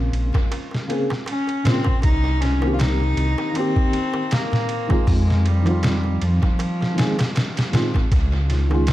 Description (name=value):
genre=trip hop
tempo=79 BPM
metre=4/4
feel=swing 55% on 16ths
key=C phrygian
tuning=A4 = 442 Hz
part: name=felt-muted upright piano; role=accompaniment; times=0.0-8.9 s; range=Db3 to Ab4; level=-25 LUFS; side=equal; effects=harmonic tremolo, tape echo
part: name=dark detuned saw bass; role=bass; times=0.0-8.9 s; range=Bb1 to F2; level=-19 LUFS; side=equal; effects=none
part: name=trip hop sampler-style drum kit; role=drums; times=0.1-8.9 s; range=hi-hat, kick drum, ride cymbal, snare drum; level=-22 LUFS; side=equal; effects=dub echo
part: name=darbuka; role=percussion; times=0.3-8.9 s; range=none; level=-30 LUFS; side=right 1 dB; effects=none
part: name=rich cello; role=melody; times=1.3-7.7 s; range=F3 to F4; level=-26 LUFS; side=left 1 dB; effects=tape echo
room=small room reverb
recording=echo-heavy mix, vinyl crackle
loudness=-18 LUFS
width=side -15 dB against mid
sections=0.0-8.9 A section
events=none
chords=0.0 Bbmadd9; 2.0 Cm7; 5.1 Fm7; 8.1 Dbadd9